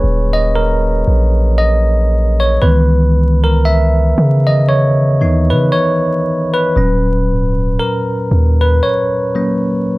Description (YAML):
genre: contemporary R&B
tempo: 58 BPM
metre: 4/4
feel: swing 58% on 16ths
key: unclear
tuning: A4 = 439 Hz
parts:
  - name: bell-like tine electric piano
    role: accompaniment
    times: 0.0-10.0 s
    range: A#2 to E5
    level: -14 LUFS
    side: equal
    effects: fast stereo tremolo
  - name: long sustained 808-style bass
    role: bass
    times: 0.0-8.8 s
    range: C#1 to C#3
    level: -12 LUFS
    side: equal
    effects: none
room: light reverb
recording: vinyl crackle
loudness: -11 LUFS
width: side -21 dB against mid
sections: 0.0-10.0 A section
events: tine electric piano solo 0.0-10.0; break 8.8-10.0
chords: 0.0 D#m7; 2.6 C#m7; 6.8 D#m7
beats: 0.55 1.59 | 2.62 3.66 4.69 5.73 | 6.76 7.80 8.83 9.87